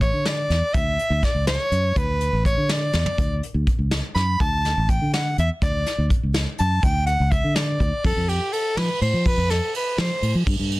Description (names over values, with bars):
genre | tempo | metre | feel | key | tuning
progressive instrumental, band music in an uneven meter | 247 BPM (eighths) | 5/8 | straight | unclear | A4 = 440 Hz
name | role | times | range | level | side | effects
breathy soprano saxophone | melody | 0.0-10.3 s | G4 to B5 | -24 LUFS | equal | none
fingered electric bass | bass | 0.0-10.8 s | A1 to F3 | -22 LUFS | equal | none
vintage brush drum kit | drums | 0.0-10.8 s | hi-hat, kick drum, ride cymbal, snare drum, toms | -24 LUFS | equal | none
room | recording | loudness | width
little or no reverb | dense, heavily limited modern master | -19 LUFS | side -19 dB against mid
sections
0.0-8.0 A section; 8.0-10.8 B section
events
soprano saxophone solo 0.0-8.0; drum fill 2.9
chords
0.0 Aadd11; 0.7 D; 2.0 Bm; 3.2 D; 4.4 Asus4; 5.6 D; 6.8 E7sus2; 8.0 F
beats
0.01 0.26 0.50 | 0.75 0.99 1.23 1.48 1.72 | 1.96 2.21 2.45 2.69 2.94 | 3.18 3.43 3.67 3.91 4.16 | 4.40 4.64 4.88 5.13 5.37 | 5.62 5.86 6.10 6.34 6.59 | 6.83 7.07 7.32 7.56 7.80 | 8.04 8.29 8.53 8.77 9.01 | 9.26 9.50 9.74 9.98 10.23 | 10.47 10.71